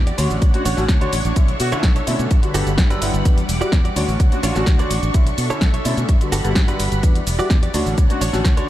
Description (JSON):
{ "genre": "filtered disco house", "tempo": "127 BPM", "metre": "4/4", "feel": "straight", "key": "unclear", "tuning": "A4 = 440 Hz", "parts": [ { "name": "string machine, full ensemble", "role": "sustained chords", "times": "0.0-8.7 s", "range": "G3 to D6", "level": "-26 LUFS", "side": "equal", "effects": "ensemble chorus, vintage 12-bit sampler grit, sidechain pumping, low-pass filter" }, { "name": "fingered electric bass", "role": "bass", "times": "0.0-8.6 s", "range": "E1 to B2", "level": "-22 LUFS", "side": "equal", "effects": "sidechain pumping, low-pass filter" }, { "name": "direct-recorded clean electric guitar", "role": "riff", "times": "0.1-8.7 s", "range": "D4 to D5", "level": "-28 LUFS", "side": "right 5 dB", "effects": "sidechain pumping, low-pass filter" }, { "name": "house drum kit", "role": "drums", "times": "0.1-8.7 s", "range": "cabasa, hi-hat, snare drum", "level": "-26 LUFS", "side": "equal", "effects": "sidechain pumping on perc, studio reverb, sidechain pumping on hats" }, { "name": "dark concert grand piano", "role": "accompaniment", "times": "0.2-8.7 s", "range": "D3 to A4", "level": "-25 LUFS", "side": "left 2 dB", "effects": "phaser, sidechain pumping, low-pass filter" }, { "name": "electronic kick drum", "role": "drums", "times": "0.4-8.5 s", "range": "none", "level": "-16 LUFS", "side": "equal", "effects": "studio reverb" }, { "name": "bright horn section", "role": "melody", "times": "0.5-4.9, 8.1-8.2 s", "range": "F#4", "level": "-32 LUFS", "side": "left 1 dB", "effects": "none" } ], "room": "little or no reverb", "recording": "none", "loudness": "-15 LUFS", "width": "side -14 dB against mid", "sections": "0.0-8.7 A section", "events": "none", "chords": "0.2 Dmaj7; 1.4 Bm11; 2.3 Gmaj7; 3.3 Em9; 4.0 Dmaj7; 5.1 Bm11; 6.1 Gmaj7; 7.0 Em9; 7.7 Dmaj7" }